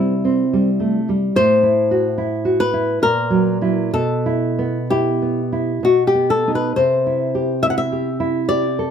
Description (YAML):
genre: romantic duo for nylon-string guitar and classical guitar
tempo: 62-73 BPM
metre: 3/4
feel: rubato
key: unclear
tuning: A4 = 440 Hz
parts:
  - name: flamenco guitar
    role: melody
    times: 0.0-8.9 s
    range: E4 to F#5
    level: -19 LUFS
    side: left 3 dB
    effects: none
  - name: nylon-string guitar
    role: accompaniment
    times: 0.0-8.9 s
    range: A2 to A4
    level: -18 LUFS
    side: right 2 dB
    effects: none
room: light reverb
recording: close, detailed microphones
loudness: -16 LUFS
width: side -8 dB against mid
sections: 0.0-8.9 A section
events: none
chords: 0.0 C6; 1.4 F#m7b5/A; 3.0 F#7/A#; 3.9 Em/B; 5.8 B; 6.8 C